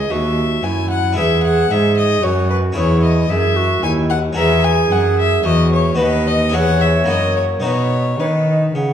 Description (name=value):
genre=classical, baroque-style sonata movement with continuo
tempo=112 BPM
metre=3/4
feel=straight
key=B major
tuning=A4 = 440 Hz
part: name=rich violin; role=melody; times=0.0-8.7 s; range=B4 to G#5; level=-20 LUFS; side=left 6 dB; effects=none
part: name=bright baroque flute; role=second line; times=0.0-8.9 s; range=E4 to F#5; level=-20 LUFS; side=right 5 dB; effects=none
part: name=harpsichord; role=accompaniment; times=0.0-8.9 s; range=D#2 to B4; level=-21 LUFS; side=left 2 dB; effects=none
part: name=dark cello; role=bass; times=0.0-8.9 s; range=D#2 to D#3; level=-18 LUFS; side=right 1 dB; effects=none
room=wet recital hall reverb, RT60 1.6 s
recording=dark, warm production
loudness=-13 LUFS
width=side -9 dB against mid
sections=0.0-8.9 A section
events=none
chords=0.0 C#m; 1.2 C#m/E; 4.4 F#7/E; 6.0 B/D#; 6.5 C#m/E; 7.1 F#7; 7.6 B